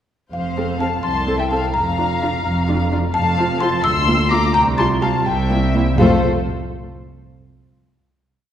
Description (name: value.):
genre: cinematic, playful, whimsical film cue.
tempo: 85 BPM (dotted quarters).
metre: 6/8.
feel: straight.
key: F major.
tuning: A4 = 440 Hz.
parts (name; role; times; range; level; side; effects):
muted studio violin section; melody; 0.3-6.2 s; C5 to C6; -24 LUFS; left 4 dB; none.
xylophone with rubber mallets; melody; 0.3-6.2 s; F5 to E6; -22 LUFS; left 3 dB; none.
muted studio violin section; second line; 0.3-6.2 s; A4 to E6; -26 LUFS; left 2 dB; none.
muted chamber cello section; bass; 0.3-6.2 s; C2 to F2; -22 LUFS; right 2 dB; none.
muted chamber double bass section; bass; 0.3-6.2 s; F1 to D2; -23 LUFS; right 1 dB; none.
muted chamber viola section; accompaniment; 0.6-6.2 s; G3 to A4; -22 LUFS; equal; none.
room: wet scoring stage reverb, RT60 1.6 s.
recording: heard from further back in the room.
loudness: -15 LUFS.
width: side -10 dB against mid.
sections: 0.3-6.0 A section; 6.0-7.4 final chord.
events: none.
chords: 0.3 F; 1.7 Bb/F; 3.1 F; 3.8 Bb/D; 4.5 Csus4; 5.3 C7; 6.0 F.